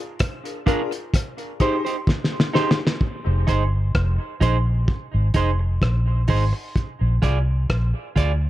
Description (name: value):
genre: dub reggae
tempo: 64 BPM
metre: 4/4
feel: straight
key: F dorian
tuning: A4 = 440 Hz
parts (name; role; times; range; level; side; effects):
- cloth-damped thuddy drum kit; drums; 0.2-8.4 s; hi-hat, kick drum, rim click, snare drum; -21 LUFS; equal; none
- warm upright piano; stabs; 0.4-2.8 s; D4 to C5; -30 LUFS; left 6 dB; dub echo
- clean electric guitar; accompaniment; 0.7-8.3 s; D4 to D5; -27 LUFS; right 5 dB; dub echo
- vintage muted fingered electric bass; bass; 3.3-8.5 s; F1 to D2; -19 LUFS; equal; none
room: light reverb, small room ambience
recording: dark, warm production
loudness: -19 LUFS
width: side -15 dB against mid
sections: 0.0-3.0 A section; 3.0-8.5 B section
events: break 0.0-3.0; drum fill 2.1-3.0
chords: 0.0 Bb7; 1.1 Abmaj7; 3.0 Fm7; 6.8 Bb7